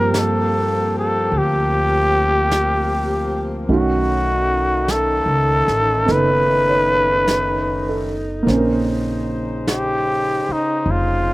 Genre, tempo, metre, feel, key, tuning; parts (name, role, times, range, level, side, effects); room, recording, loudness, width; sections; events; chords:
jazz ballad; 50 BPM; 4/4; swing 68% on 8ths; A4 = 441 Hz
growling trumpet; melody; 0.0-11.3 s; Eb4 to B4; -18 LUFS; equal; slapback echo
warm upright piano; accompaniment; 0.0-11.3 s; D#3 to C#5; -23 LUFS; right 3 dB
mellow saxophone section; sustained chords; 0.0-11.3 s; Db3 to C5; -25 LUFS; left 1 dB
upright bass; bass; 0.0-11.3 s; F1 to G2; -23 LUFS; equal
jazz brush drum kit; drums; 0.1-11.3 s; brushed snare drum, hi-hat, snare drum; -28 LUFS; right 1 dB
little or no reverb; recorded outdoors, with no room sound; -16 LUFS; side -19 dB against mid
0.0-11.3 A section
0.0 Gm7; 3.7 B9; 8.5 Bbmadd9